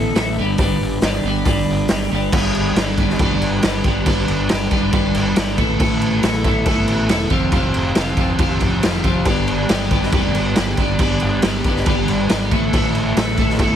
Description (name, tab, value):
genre	indie rock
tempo	138 BPM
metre	4/4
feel	straight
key	G mixolydian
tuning	A4 = 442 Hz
part	twelve-string electric guitar	riff	0.0-13.8 s	F3 to A4	-19 LUFS	equal	double-tracked left and right
part	fuzz fingered electric bass	bass	0.0-13.8 s	E1 to A1	-23 LUFS	equal	overdrive
part	raw garage drum kit	drums	0.2-13.7 s	crash cymbal, hi-hat, kick drum, snare drum	-18 LUFS	equal	none
room	light reverb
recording	heavily compressed radio sound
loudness	-15 LUFS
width	side -9 dB against mid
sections	0.0-2.3 A section; 2.3-13.8 B section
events	none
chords	0.4 G; 5.6 Asus2; 7.3 Fsus2; 9.3 G; 12.5 Asus2